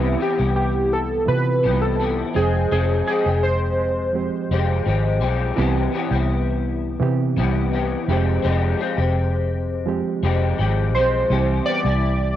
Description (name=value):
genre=indie pop, bedroom pop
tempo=84 BPM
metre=4/4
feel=straight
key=C major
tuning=A4 = 439 Hz
part: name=warbly lo-fi synth keys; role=melody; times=0.0-4.8, 10.9-12.4 s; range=E4 to D5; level=-22 LUFS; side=right 1 dB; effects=analog chorus, cassette tape, tape echo
part: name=electric guitar through a small old amp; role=accompaniment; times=0.0-12.4 s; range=C3 to G4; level=-25 LUFS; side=left 8 dB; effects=ensemble chorus, warbly pitch drift, cassette tape
part: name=reed electric piano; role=accompaniment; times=0.0-12.4 s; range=E3 to G5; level=-27 LUFS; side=right 7 dB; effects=cassette tape
part: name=vintage muted fingered electric bass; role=bass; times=0.0-12.4 s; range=F1 to C3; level=-21 LUFS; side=equal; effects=tube saturation
room=little or no reverb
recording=home recording on cassette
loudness=-18 LUFS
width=side -12 dB against mid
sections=0.0-12.4 A section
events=none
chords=0.0 Cmaj7; 2.4 Fmadd9; 5.6 Cmaj7; 8.1 Fmadd9; 11.3 Cmaj7